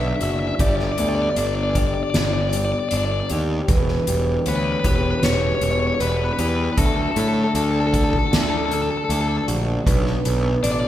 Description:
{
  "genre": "post-rock",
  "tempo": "78 BPM",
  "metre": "4/4",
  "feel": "straight",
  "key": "E minor",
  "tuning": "A4 = 440 Hz",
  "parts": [
    { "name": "crunchy overdriven guitar", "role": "melody", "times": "0.0-10.9 s", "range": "A4 to E5", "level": "-24 LUFS", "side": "left 3 dB", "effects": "none" },
    { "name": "pedal steel guitar", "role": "sustained chords", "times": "0.0-10.9 s", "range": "D3 to G4", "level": "-34 LUFS", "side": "right 1 dB", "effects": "none" },
    { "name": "twelve-string electric guitar", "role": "arpeggios", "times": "0.0-10.9 s", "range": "E2 to G4", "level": "-27 LUFS", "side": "left 3 dB", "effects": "none" },
    { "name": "vibraphone with soft mallets", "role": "arpeggios", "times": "0.0-10.9 s", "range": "B4 to E5", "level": "-30 LUFS", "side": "right 4 dB", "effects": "none" },
    { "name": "fuzz picked electric bass", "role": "bass", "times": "0.0-10.9 s", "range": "E1 to A2", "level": "-23 LUFS", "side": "equal", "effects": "overdrive" },
    { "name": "soft-mallet drum kit", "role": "drums", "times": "0.2-10.8 s", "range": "hi-hat, kick drum, snare drum", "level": "-24 LUFS", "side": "equal", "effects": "none" }
  ],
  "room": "moderate recital hall reverb, RT60 1.6 s",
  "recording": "recorded in a church or concert hall",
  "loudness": "-18 LUFS",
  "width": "side -12 dB against mid",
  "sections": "0.0-10.9 A section",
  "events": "none",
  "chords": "0.0 Bm; 0.6 G; 3.7 Em; 6.8 D; 9.9 Bm"
}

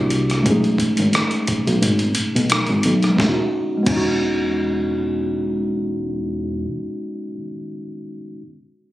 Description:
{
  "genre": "R&B, neo-soul",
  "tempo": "88 BPM",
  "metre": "4/4",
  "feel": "swing 53% on 16ths",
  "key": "E major",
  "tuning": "A4 = 440 Hz",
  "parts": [
    { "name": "tine electric piano", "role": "accompaniment", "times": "0.0-8.4 s", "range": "G3 to G#4", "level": "-21 LUFS", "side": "equal", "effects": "none" },
    { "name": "fat analog bass", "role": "bass", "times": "0.0-6.7 s", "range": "E1 to C2", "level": "-21 LUFS", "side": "equal", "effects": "none" },
    { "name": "boom bap sampler-style drum kit", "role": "drums", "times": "0.1-4.1 s", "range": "crash cymbal, hi-hat, kick drum, rim click, snare drum", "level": "-22 LUFS", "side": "equal", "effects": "none" }
  ],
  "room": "digital ambience",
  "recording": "recorded on a phone in the room, club reverb",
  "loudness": "-17 LUFS",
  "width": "side -16 dB against mid",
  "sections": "0.0-3.2 A section; 3.2-5.9 B section",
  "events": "kick muted 1.8-3.2",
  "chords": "0.5 B13; 3.2 Emaj7"
}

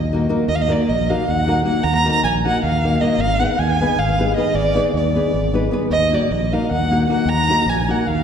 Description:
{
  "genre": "balkan folk, Balkan wedding band",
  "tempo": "310 BPM (eighths)",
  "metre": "7/8",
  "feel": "straight",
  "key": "Eb harmonic minor",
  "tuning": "A4 = 440 Hz",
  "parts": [
    { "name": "dark violin", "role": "melody", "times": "0.0-8.2 s", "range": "D5 to Bb5", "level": "-20 LUFS", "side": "right 2 dB", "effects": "none" },
    { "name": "modern bright fingered electric bass", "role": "bass", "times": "0.0-8.2 s", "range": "Ab1 to Eb2", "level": "-21 LUFS", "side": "equal", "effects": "none" },
    { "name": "nylon-string guitar", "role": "accompaniment", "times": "0.1-8.0 s", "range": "Bb3 to Cb5", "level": "-21 LUFS", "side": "left 2 dB", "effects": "none" }
  ],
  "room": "wet concert hall reverb, RT60 2.5 s",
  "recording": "heard from further back in the room",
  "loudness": "-16 LUFS",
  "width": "side -7 dB against mid",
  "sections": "0.5-8.2 A section",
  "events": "none",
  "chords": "0.5 Ebm; 3.2 Abm; 5.9 Ebm"
}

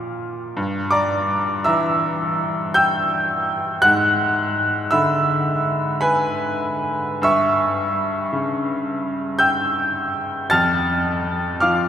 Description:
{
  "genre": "classical, romantic nocturne for solo piano",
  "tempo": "55 BPM (dotted quarters)",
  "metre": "9/8",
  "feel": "rubato",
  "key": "unclear",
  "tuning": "A4 = 440 Hz",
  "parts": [
    { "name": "bright baby grand piano", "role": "solo", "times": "0.0-11.9 s", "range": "F2 to A6", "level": "-18 LUFS", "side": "equal", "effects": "none" }
  ],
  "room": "wet cathedral reverb, RT60 6.3 s",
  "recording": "heard from further back in the room",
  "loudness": "-18 LUFS",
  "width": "side -9 dB against mid",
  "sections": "0.0-11.9 A section",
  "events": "none",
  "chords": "0.0 Bb; 0.6 Edim/G; 3.8 E7/G#; 7.2 C#dim/G; 10.5 Dm/F"
}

